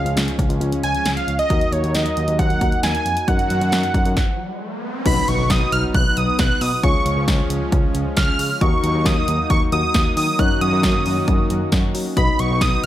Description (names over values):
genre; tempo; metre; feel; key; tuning
synth-pop; 135 BPM; 4/4; straight; F# major; A4 = 440 Hz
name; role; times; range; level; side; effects
wide unison lead; melody; 0.0-12.9 s; C#5 to F#6; -22 LUFS; right 2 dB; tape echo
soft electric-piano-like synth keys; accompaniment; 0.0-12.9 s; B3 to D#5; -26 LUFS; left 4 dB; chorus
brassy analog pad; sustained chords; 0.0-12.9 s; D#3 to F#4; -27 LUFS; right 2 dB; chorus
bell-like tine electric piano; bass; 0.0-12.9 s; B1 to F#3; -22 LUFS; equal; none
punchy analog drum machine; drums; 0.1-12.9 s; crash cymbal, hi-hat, kick drum, snare drum; -20 LUFS; equal; none
riser and impact; sound effects; 4.2-6.8 s; none; -29 LUFS; equal; none
room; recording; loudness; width
digital ambience; none; -16 LUFS; side -13 dB against mid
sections
0.0-5.1 A section; 5.1-12.9 B section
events
stop 4.2-5.1; riser 4.2-5.1; impact 5.1-6.8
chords
0.0 C#; 1.5 D#m; 3.3 F#6; 5.1 B; 6.8 C#; 8.6 D#m; 10.4 F#6; 12.2 B